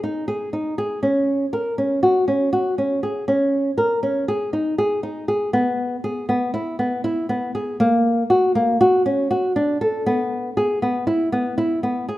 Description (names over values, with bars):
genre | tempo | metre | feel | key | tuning
contemporary instrumental, contemporary | 239 BPM (eighths) | 9/8 | straight | unclear | A4 = 440 Hz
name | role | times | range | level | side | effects
nylon-string guitar | solo | 0.0-12.2 s | A#3 to A#4 | -18 LUFS | equal | none
room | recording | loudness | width
moderate recital hall reverb, RT60 1.6 s | none | -18 LUFS | side -16 dB against mid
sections
0.0-5.5 A section; 5.5-12.2 B section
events
none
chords
none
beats
0.03 0.28 0.53 0.78 | 1.03 1.28 1.53 1.78 2.03 2.28 2.53 2.78 3.03 | 3.28 3.53 3.78 4.03 4.28 4.53 4.78 5.03 5.28 | 5.53 5.78 6.04 6.29 6.54 6.79 7.04 7.29 7.54 | 7.79 8.05 8.30 8.55 8.80 9.05 9.31 9.56 9.81 | 10.06 10.31 10.57 10.82 11.07 11.32 11.58 11.83 12.08